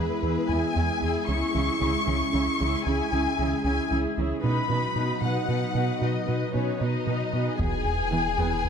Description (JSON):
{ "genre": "cinematic, hybrid orchestral and electronic film score", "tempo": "76 BPM (dotted quarters)", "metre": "6/8", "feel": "straight", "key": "C# minor", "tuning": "A4 = 439 Hz", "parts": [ { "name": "warm symphonic violin section", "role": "melody", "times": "0.0-8.7 s", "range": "B4 to C#6", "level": "-30 LUFS", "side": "left 5 dB", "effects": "none" }, { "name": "rich symphonic viola section", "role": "accompaniment", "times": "0.0-8.6 s", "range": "E3 to B4", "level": "-32 LUFS", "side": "right 1 dB", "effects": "none" }, { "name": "airy breathy pad", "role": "sustained chords", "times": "0.0-8.7 s", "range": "E3 to E5", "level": "-31 LUFS", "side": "equal", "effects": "chorus" }, { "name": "rubbery square bass", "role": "riff", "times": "0.0-8.7 s", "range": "C#2 to E3", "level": "-29 LUFS", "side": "right 1 dB", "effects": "none" }, { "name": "dark symphonic cello section", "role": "bass", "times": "0.0-8.5 s", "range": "E2 to C#3", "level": "-31 LUFS", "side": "right 3 dB", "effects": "none" }, { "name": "rich studio violin section", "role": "second line", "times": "6.5-8.7 s", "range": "C#4 to G#4", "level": "-33 LUFS", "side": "left 3 dB", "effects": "none" }, { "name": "punchy sub bass", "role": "bass", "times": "7.6-8.7 s", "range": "E1", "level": "-32 LUFS", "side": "left 1 dB", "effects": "none" }, { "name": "taiko ensemble", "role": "drums", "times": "7.6-8.6 s", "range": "none", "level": "-36 LUFS", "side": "left 1 dB", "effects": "none" } ], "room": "moderate scoring stage reverb, RT60 1.9 s", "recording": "none", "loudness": "-23 LUFS", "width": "side -7 dB against mid", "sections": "0.0-7.6 A section; 7.6-8.7 B section", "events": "none", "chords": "0.0 E; 1.3 C#m; 4.4 B; 7.6 E" }